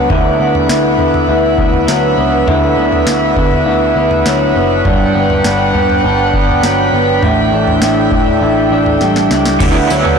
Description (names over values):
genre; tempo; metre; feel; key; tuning
dream pop; 101 BPM; 4/4; straight; D major; A4 = 435 Hz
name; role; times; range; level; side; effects
hollow soft pad; sustained chords; 0.0-10.2 s; D4 to G5; -15 LUFS; right 3 dB; chorus
electric guitar through a small old amp; arpeggios; 0.0-10.2 s; G2 to E4; -13 LUFS; left 2 dB; wide subtle chorus, tape echo
vintage muted picked electric bass; bass; 0.0-10.2 s; F#1 to D3; -18 LUFS; equal; tube saturation
booming analog drum machine; drums; 0.1-10.2 s; crash cymbal, kick drum, snare drum, tambourine, toms; -18 LUFS; equal; overdrive
raw garage guitar; accompaniment; 9.6-10.2 s; D3 to E4; -15 LUFS; right 4 dB; overdrive, tremolo, wide subtle chorus
room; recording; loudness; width
moderate shimmer reverb, RT60 5.6 s; blown-out, overdriven recording, overdrive; -10 LUFS; side -6 dB against mid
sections
0.0-9.6 A section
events
drum fill 9.0-9.6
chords
0.1 D69; 4.9 Gmaj7; 7.2 A7sus4; 9.6 D69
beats
| 0.10 0.69 1.29 1.88 | 2.48 3.07 3.66 4.26 | 4.85 5.45 6.04 6.63 | 7.23 7.82 8.42 9.01 | 9.61